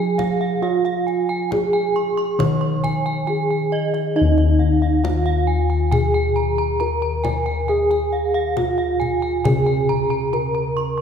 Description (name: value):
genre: Javanese gamelan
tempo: 68 BPM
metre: 4/4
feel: straight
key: Eb slendro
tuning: A4 = 440 Hz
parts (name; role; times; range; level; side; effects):
- gamelan-type bronze metallophone; melody; 0.0-11.0 s; Eb4 to Db5-40c; -21 LUFS; equal; none
- gamelan-type bronze metallophone; arpeggios; 0.0-11.0 s; Eb5 to Db6-40c; -25 LUFS; right 4 dB; none
- gamelan-type bossed gongs; bass; 0.0-11.0 s; Eb2 to Ab4-20c; -21 LUFS; left 2 dB; none
- kendang; percussion; 0.2-10.9 s; none; -27 LUFS; left 2 dB; none
room: wet concert hall reverb, RT60 2.4 s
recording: recorded in a church or concert hall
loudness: -17 LUFS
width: side -7 dB against mid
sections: 0.0-11.0 A section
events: none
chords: none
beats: | 0.62 1.51 2.39 3.27 | 4.16 5.04 5.92 6.80 | 7.68 8.57 9.45 10.33